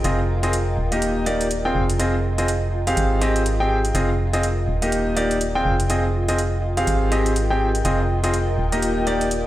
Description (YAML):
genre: piano house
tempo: 123 BPM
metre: 4/4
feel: swing 59% on 16ths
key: F minor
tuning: A4 = 441 Hz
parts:
  - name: clear grand piano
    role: riff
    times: 0.0-9.3 s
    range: Bb3 to G5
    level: -22 LUFS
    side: equal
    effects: digital delay
  - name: organ-like FM bass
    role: bass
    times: 0.0-9.5 s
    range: Eb1 to Ab1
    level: -23 LUFS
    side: equal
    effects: none
  - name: electronic hi-hat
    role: drums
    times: 0.0-9.4 s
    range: none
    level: -31 LUFS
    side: right 2 dB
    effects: none
  - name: granular cloud pad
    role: texture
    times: 0.0-9.5 s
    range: F4 to G5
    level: -29 LUFS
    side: equal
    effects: built-in reverb
room: light reverb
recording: played on a big sound system in a bare room, large studio reverb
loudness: -18 LUFS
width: side -14 dB against mid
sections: 0.0-9.5 A section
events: none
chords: 0.0 Fm7; 0.8 Ebmaj7; 1.8 Fm7; 3.0 Abmaj7; 3.9 Fm7; 4.7 Ebmaj7; 5.7 Fm7; 6.9 Abmaj7; 7.8 Fm7; 8.6 Ebmaj7